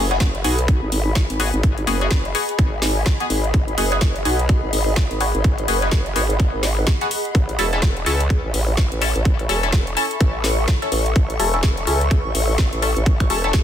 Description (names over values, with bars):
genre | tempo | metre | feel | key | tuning
bass house | 126 BPM | 4/4 | swing 59% on 16ths | G# phrygian | A4 = 440 Hz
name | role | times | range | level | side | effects
band-passed chord stab | stabs | 0.0-13.5 s | B3 to A4 | -24 LUFS | left 2 dB | phaser, wide subtle chorus, sidechain pumping, ping-pong delay
vowel-sweep wobble bass | bass | 0.0-13.6 s | E1 to C#2 | -22 LUFS | equal | chorus, overdrive, sidechain pumping
granular cloud pad | texture | 0.0-13.6 s | G#4 to D#6 | -27 LUFS | left 1 dB | built-in reverb, sidechain pumping
garage drum kit | drums | 0.1-13.6 s | finger snaps, hi-hat, snare drum | -26 LUFS | left 2 dB | studio reverb
electronic kick drum | drums | 0.2-13.6 s | none | -16 LUFS | equal | studio reverb
room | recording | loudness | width
digital ambience | dense, heavily limited modern master | -17 LUFS | side -10 dB against mid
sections
0.0-13.6 A section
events
none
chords
0.0 G#m7; 7.3 A